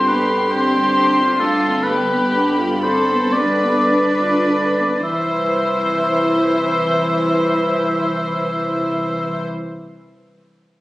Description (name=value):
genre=classical, slow romantic movement for symphony orchestra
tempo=33-46 BPM (dotted quarters)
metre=12/8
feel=rubato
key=C major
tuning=A4 = 441 Hz
part: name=warm studio violin section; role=melody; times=0.0-9.4 s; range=C5 to C6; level=-28 LUFS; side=left 1 dB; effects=none
part: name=rich studio violin section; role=second line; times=0.0-9.4 s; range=F4 to C5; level=-23 LUFS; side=left 1 dB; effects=none
part: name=warm oboe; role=second line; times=0.0-9.4 s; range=A4 to E5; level=-19 LUFS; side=equal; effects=none
part: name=dark studio viola section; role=accompaniment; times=0.0-9.4 s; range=D3 to F4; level=-21 LUFS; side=equal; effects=none
part: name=dark studio cello section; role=bass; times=0.0-9.4 s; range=E3 to D4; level=-25 LUFS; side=right 1 dB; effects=none
part: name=dark studio double bass section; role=bass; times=0.0-9.4 s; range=G1 to C2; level=-29 LUFS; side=right 1 dB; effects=none
room=moderate scoring stage reverb, RT60 1.7 s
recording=recorded on a phone in the room, club ambience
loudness=-15 LUFS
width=side -18 dB against mid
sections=0.0-5.0 A section; 5.0-10.8 B section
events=slowing down 0.0-5.0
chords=0.0 G7sus4; 1.9 G7; 5.0 C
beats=0.51 1.86 3.34 | 5.03 6.54 8.10